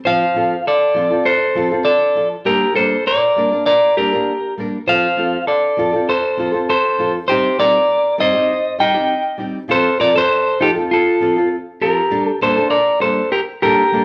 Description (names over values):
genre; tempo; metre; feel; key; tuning
highlife; 100 BPM; 4/4; straight; G minor; A4 = 440 Hz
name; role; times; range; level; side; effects
clean electric guitar; melody; 0.1-14.0 s; Eb4 to G5; -17 LUFS; equal; none
nylon-string guitar; accompaniment; 0.1-14.0 s; F3 to Bb4; -24 LUFS; equal; none
room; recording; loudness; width
moderate large studio reverb, RT60 0.8 s; band playing live in one room; -16 LUFS; mono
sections
0.0-12.1 A section; 12.1-14.0 B section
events
none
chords
0.1 F; 2.5 Gm; 4.9 F; 7.3 Cm; 9.7 F; 12.1 Gmadd9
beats
| 0.06 0.66 1.26 1.86 | 2.47 3.07 3.67 4.27 | 4.88 5.48 6.08 6.69 | 7.29 7.89 8.50 9.10 | 9.71 10.31 10.91 11.52 | 12.12 12.72 13.33 13.93